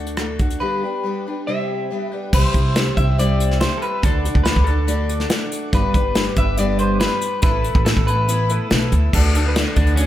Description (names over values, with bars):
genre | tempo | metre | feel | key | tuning
folk rock and heartland rock | 141 BPM | 4/4 | straight | D mixolydian | A4 = 442 Hz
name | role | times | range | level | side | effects
electric guitar through a small old amp | melody | 0.0-10.1 s | C#4 to E5 | -24 LUFS | left 1 dB | spring reverb
picked twelve-string acoustic guitar | accompaniment | 0.0-10.1 s | G2 to B4 | -24 LUFS | left 1 dB | none
upright bass | bass | 0.0-10.1 s | G1 to D2 | -20 LUFS | equal | none
soft brush drum kit | drums | 0.1-10.1 s | crash cymbal, hi-hat, kick drum, rim click, snare drum | -20 LUFS | equal | none
mellow tonewheel organ | sustained chords | 2.3-9.1 s | A4 to E6 | -34 LUFS | equal | slow rotary speaker
bright upright piano | accompaniment | 5.7-10.0 s | D4 to B4 | -31 LUFS | right 1 dB | none
room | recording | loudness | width
light reverb | none | -16 LUFS | side -12 dB against mid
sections
0.0-2.3 A section; 2.3-9.1 B section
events
none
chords
0.0 D; 0.6 G; 1.5 C; 1.9 G; 2.3 C; 4.0 D; 5.7 G; 7.4 Asus2; 9.1 D